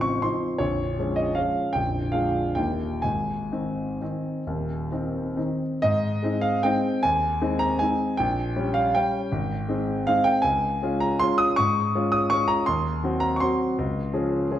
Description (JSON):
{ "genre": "classical, piano waltz", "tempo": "122-173 BPM", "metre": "3/4", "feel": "rubato", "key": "Ab major", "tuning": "A4 = 440 Hz", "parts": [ { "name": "warm concert grand piano", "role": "solo", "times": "0.0-14.6 s", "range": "A0 to Eb6", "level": "-22 LUFS", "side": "equal", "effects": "none" } ], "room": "wet recital hall reverb, RT60 1.3 s", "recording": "dark, warm production", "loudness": "-22 LUFS", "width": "side -11 dB against mid", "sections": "0.0-5.8 A section; 5.8-14.6 B section", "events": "none", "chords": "0.0 F7/A; 0.6 Bbm7; 1.8 Bb7; 2.6 Eb; 3.0 Ab; 8.2 Gdim/Bb; 9.3 Ab; 10.4 Db; 12.7 Cdim/Eb; 13.8 Dbmaj7", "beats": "0.23 | 0.61 0.99 1.38 | 1.76 2.15 2.58 | 3.04 3.52 4.01 | 4.46 4.90 5.37 | 5.83 6.23 6.63 | 7.03 7.40 7.80 | 8.18 8.55 8.94 | 9.31 9.68 10.06 | 10.43 10.82 11.20 | 11.57 11.94 12.31 | 12.68 13.04 13.42 | 13.79 14.13 14.50" }